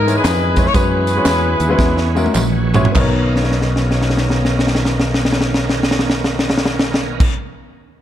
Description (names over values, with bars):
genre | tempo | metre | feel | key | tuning
uptempo gospel | 97-125 BPM | 4/4 | swing 65% on 8ths | B major | A4 = 440 Hz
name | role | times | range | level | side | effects
warm horn section | melody | 0.0-2.4 s | D#4 to C#5 | -18 LUFS | left 2 dB | none
bright tonewheel organ | sustained chords | 0.0-7.3 s | D#3 to G#5 | -24 LUFS | right 4 dB | chorus vibrato, slow rotary speaker
fingered electric bass | bass | 0.0-7.3 s | A#1 to G#2 | -18 LUFS | equal | none
clear baby grand piano | accompaniment | 0.1-7.3 s | B1 to C#5 | -22 LUFS | left 3 dB | none
crisp fusion drum kit | drums | 0.1-7.3 s | crash cymbal, hi-hat, kick drum, snare drum, toms | -17 LUFS | equal | none
tambourine and handclaps | percussion | 0.1-7.3 s | none | -30 LUFS | right 3 dB | none
room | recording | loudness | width
light reverb | dark, warm production | -13 LUFS | side -11 dB against mid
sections
0.0-3.0 A section; 3.0-7.9 B section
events
slowing down 0.0-3.0; drum fill 1.8-3.0, 3.3-7.2; tonewheel organ fill 2.1-3.0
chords
0.0 Emaj7; 0.7 F#9sus4; 3.0 Bmaj9